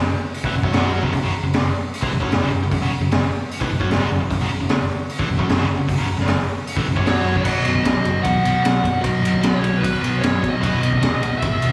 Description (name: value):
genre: hard rock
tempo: 152 BPM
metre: 4/4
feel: straight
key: unclear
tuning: A4 = 438 Hz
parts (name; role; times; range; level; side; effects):
- biting overdriven guitar; riff; 0.0-11.7 s; E2 to F#4; -26 LUFS; equal; slapback echo
- picked electric bass; bass; 0.0-11.7 s; E1 to F#2; -26 LUFS; equal; none
- raw garage drum kit; drums; 0.3-11.7 s; crash cymbal, hi-hat, kick drum, ride cymbal, snare drum; -23 LUFS; equal; none
- smooth overdriven lead guitar; melody; 7.1-11.7 s; B4 to F#5; -26 LUFS; equal; slapback echo
room: light reverb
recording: live gig heard through the venue's PA, recital hall reverb, studio reverb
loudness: -20 LUFS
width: mono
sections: 0.0-7.5 A section; 7.5-11.7 B section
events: none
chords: 0.0 F#5; 7.5 Badd9; 10.6 E5